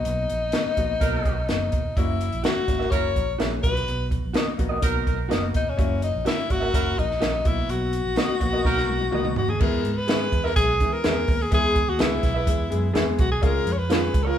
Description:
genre	uptempo 1960s-style soul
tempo	126 BPM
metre	4/4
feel	straight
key	unclear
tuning	A4 = 440 Hz
part	warm tenor saxophone	melody	0.0-14.4 s	C#4 to C#5	-26 LUFS	left 2 dB	none
part	warm upright piano	accompaniment	0.0-14.2 s	F#3 to G#4	-30 LUFS	left 4 dB	none
part	vintage muted fingered electric bass	bass	0.0-14.4 s	E1 to E3	-28 LUFS	right 1 dB	none
part	compact cocktail drum kit	drums	0.1-14.3 s	crash cymbal, hi-hat, kick drum, snare drum, toms	-24 LUFS	right 1 dB	none
part	clear horn section	second line	1.0-9.0 s	F#3 to A#4	-31 LUFS	right 4 dB	tape echo
part	electric guitar through a small old amp	stabs	2.4-14.3 s	E#4 to E5	-31 LUFS	right 4 dB	none
room	moderate large studio reverb, RT60 1.2 s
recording	band playing live in one room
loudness	-20 LUFS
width	side -10 dB against mid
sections	0.0-9.6 A section; 9.6-14.4 B section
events	drum fill 8.7-9.6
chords	0.0 Bmaj7; 2.0 F#7; 3.6 Bmaj7; 5.8 F#7; 7.5 Bmaj7; 9.6 E; 13.4 C#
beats	| 0.05 0.53 1.00 1.48 | 1.96 2.44 2.92 3.40 | 3.87 4.35 4.83 5.31 | 5.79 6.27 6.74 7.22 | 7.70 8.18 8.65 9.13 | 9.61 10.09 10.56 11.04 | 11.52 12.00 12.47 12.95 | 13.43 13.90

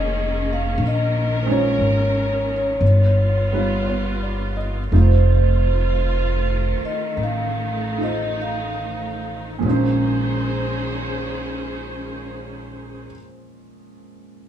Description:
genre	jazz ballad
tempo	46-60 BPM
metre	4/4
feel	swing 68% on 8ths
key	Bb minor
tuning	A4 = 440 Hz
part	vibraphone with soft mallets	melody	0.0-13.1 s	C5 to Bb5	-25 LUFS	right 1 dB	plate reverb
part	warm concert grand piano	accompaniment	0.0-14.5 s	Bb2 to Eb5	-26 LUFS	right 3 dB	none
part	warm symphonic string section	sustained chords	0.0-13.1 s	D#3 to C5	-28 LUFS	equal	none
part	upright bass	bass	0.0-13.0 s	F1 to Bb1	-21 LUFS	equal	none
room	light reverb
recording	small room ambience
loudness	-18 LUFS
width	side -10 dB against mid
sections	0.0-4.9 A section; 4.9-9.6 B section; 9.6-14.5 C section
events	slowing down 0.8-9.6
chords	0.0 Bbm11; 2.8 G7b13; 4.9 F7; 9.6 Bbm11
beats	| 0.79 1.80 2.82 3.86 | 4.93 6.03 7.18 8.38 | 9.64 10.95 12.25 13.55

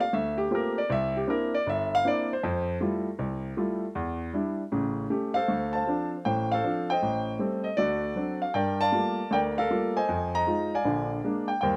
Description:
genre	solo jazz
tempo	157 BPM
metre	4/4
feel	swing 66% on 8ths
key	F major, D minor from 5.5 s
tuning	A4 = 442 Hz
part	warm grand piano	solo	0.0-11.8 s	G1 to Bb5	-28 LUFS	equal	none
room	little or no reverb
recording	recorded outdoors, with no room sound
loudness	-28 LUFS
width	mono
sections	0.0-5.5 A section; 5.5-11.8 B section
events	grand piano solo 0.0-5.5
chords	0.0 Gm11; 0.9 C9; 2.4 Fmaj9; 4.0 Em7; 4.7 A7; 5.5 Dm7; 7.0 Am7b5; 7.8 D7; 8.6 Gm9; 10.1 Fm7; 10.9 Bb7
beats	0.12 0.51 | 0.89 1.27 1.66 2.04 | 2.42 2.80 3.19 3.57 | 3.95 4.34 4.72 5.10 | 5.49 5.87 6.25 6.63 | 7.02 7.40 7.78 8.17 | 8.55 8.93 9.32 9.70 | 10.09 10.47 10.85 11.24 | 11.62

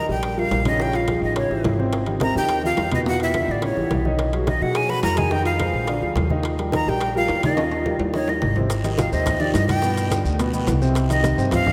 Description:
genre	Afro-Cuban jazz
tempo	212 BPM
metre	4/4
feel	straight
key	Eb major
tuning	A4 = 440 Hz
part	breathy bright jazz flute	melody	0.0-11.7 s	Db5 to B5	-27 LUFS	equal	none
part	kalimba	second line	0.0-11.7 s	C#4 to B4	-31 LUFS	equal	none
part	warm grand piano	accompaniment	0.0-11.7 s	Cb3 to Eb5	-27 LUFS	equal	none
part	upright bass	bass	0.1-11.7 s	Ab1 to B2	-27 LUFS	equal	none
part	congas	percussion	0.1-11.7 s	none	-32 LUFS	equal	none
part	bongos	percussion	0.2-11.7 s	none	-36 LUFS	equal	none
part	timbales	percussion	0.2-11.7 s	none	-34 LUFS	equal	none
part	guiro	percussion	8.7-11.7 s	none	-41 LUFS	equal	none
part	maracas	percussion	8.7-11.7 s	none	-42 LUFS	equal	none
room	wet cathedral reverb, RT60 4.9 s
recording	in a vast, echoing space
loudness	-21 LUFS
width	mono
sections	0.0-8.7 A section; 8.7-11.7 B section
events	drum fill 7.6-8.7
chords	0.0 Eb; 0.8 Bbm7; 1.4 A7; 1.9 Abmaj7; 3.1 E5; 3.6 A9; 4.2 B6; 5.3 Fm7; 5.9 Bb7; 6.4 Eb; 8.7 Abmaj7; 9.8 G7; 11.0 Cm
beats	0.23 0.52 | 0.80 1.08 1.36 1.65 | 1.93 2.21 2.49 2.78 | 3.06 3.34 3.62 3.91 | 4.19 4.47 4.75 5.04 | 5.32 5.60 5.88 6.16 | 6.45 6.73 7.01 7.29 | 7.58 7.86 8.14 8.42 | 8.70 8.99 9.27 9.55 | 9.83 10.11 10.39 10.68 | 10.96 11.24 11.52

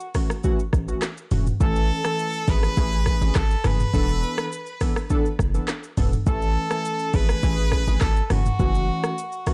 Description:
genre	afrobeats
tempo	103 BPM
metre	4/4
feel	straight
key	A major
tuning	A4 = 440 Hz
part	brilliant trumpet	melody	0.0-9.5 s	F#4 to B4	-31 LUFS	equal	digital delay
part	afro-pop drum kit	drums	0.0-9.5 s	handclaps, hi-hat, kick drum, rim click, shaker, toms	-26 LUFS	equal	vintage 12-bit sampler grit
part	warm analog keys	accompaniment	0.1-9.5 s	E3 to A4	-31 LUFS	equal	chorus
part	hard-hitting 808-style bass	bass	0.7-8.9 s	E1 to A1	-25 LUFS	equal	none
room	little or no reverb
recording	dark, warm production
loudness	-23 LUFS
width	mono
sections	0.0-9.5 A section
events	none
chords	0.0 F#m7; 1.6 Amaj7; 3.9 E7sus4; 6.3 Amaj7; 8.3 F#m7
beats	0.44 1.02 | 1.60 2.19 2.77 3.35 | 3.94 4.52 5.10 5.68 | 6.27 6.85 7.43 8.01 | 8.60 9.18

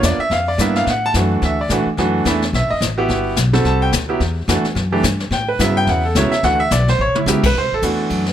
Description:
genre	jazz piano trio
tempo	216 BPM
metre	4/4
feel	swing 59% on 8ths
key	unclear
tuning	A4 = 439 Hz
part	bright grand piano	melody	0.0-8.2 s	C#3 to A5	-17 LUFS	right 2 dB	none
part	upright bass	bass	0.0-8.3 s	F#1 to A2	-20 LUFS	left 1 dB	none
part	jazz brush drum kit	drums	0.0-8.3 s	brushed snare drum, crash cymbal, hi-hat, kick drum, ride cymbal, snare drum, toms	-22 LUFS	left 3 dB	none
room	light reverb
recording	none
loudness	-15 LUFS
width	side -10 dB against mid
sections	0.0-7.5 A section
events	grand piano solo 0.0-8.3; drum fill 7.0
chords	0.0 G#dim7 (rootless); 0.9 D; 2.0 E9sus4; 2.5 B5; 3.1 Em7; 5.3 A7; 6.4 D; 7.0 A; 7.5 D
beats	0.03 0.31 0.59 | 0.86 1.14 1.42 1.70 | 1.98 2.26 2.54 2.81 | 3.09 3.37 3.65 3.93 | 4.21 4.49 4.76 5.04 | 5.32 5.60 5.88 6.15 | 6.43 6.71 6.99 7.27 | 7.54 7.82 8.10

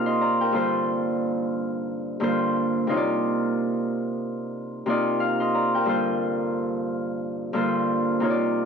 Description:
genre	hip hop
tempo	90 BPM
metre	4/4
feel	swing 61% on 16ths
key	G minor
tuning	A4 = 440 Hz
part	Celtic harp	solo	0.0-8.7 s	G2 to C6	-22 LUFS	equal	high-pass filter, low-pass filter
room	moderate studio reverb, RT60 0.6 s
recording	none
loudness	-22 LUFS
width	side -6 dB against mid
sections	0.5-8.7 A section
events	none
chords	0.0 Cm11; 0.5 Gm11; 2.9 Cm11; 5.9 Gm11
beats	| 0.54 1.21 1.87 2.54 | 3.21 3.87 4.54 5.21 | 5.87 6.54 7.21 7.87 | 8.54

